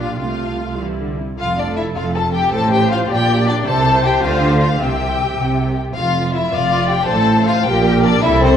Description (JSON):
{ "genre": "quick classical-period movement for string orchestra", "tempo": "105 BPM (dotted quarters)", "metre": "6/8", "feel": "straight", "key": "F major", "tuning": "A4 = 440 Hz", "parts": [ { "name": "rich chamber violin section", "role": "melody", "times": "0.0-8.6 s", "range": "C5 to A5", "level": "-20 LUFS", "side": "left 5 dB", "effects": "none" }, { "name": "warm studio violin section", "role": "second line", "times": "0.0-8.6 s", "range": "C4 to A4", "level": "-20 LUFS", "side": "left 2 dB", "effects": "none" }, { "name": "rich chamber viola section", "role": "accompaniment", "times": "0.0-8.6 s", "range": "G3 to E5", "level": "-23 LUFS", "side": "left 1 dB", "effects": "none" }, { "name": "rich chamber cello section", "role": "bass", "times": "0.0-8.6 s", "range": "F2 to E3", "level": "-20 LUFS", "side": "right 2 dB", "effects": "none" }, { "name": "warm chamber double bass section", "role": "bass", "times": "0.0-8.6 s", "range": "F1 to D2", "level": "-21 LUFS", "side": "right 3 dB", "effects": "none" } ], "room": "wet scoring stage reverb, RT60 1.6 s", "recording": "dark, warm production", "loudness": "-14 LUFS", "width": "side -8 dB against mid", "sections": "0.0-1.4 A section; 1.4-8.6 B section", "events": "none", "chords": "0.2 F/C; 0.8 C; 1.4 F; 2.5 Fadd9/A; 3.1 Gm/Bb; 3.7 Am7/C; 4.2 Dm; 4.8 C; 6.0 Dmadd9/F; 7.1 F/A; 7.7 Gm/Bb" }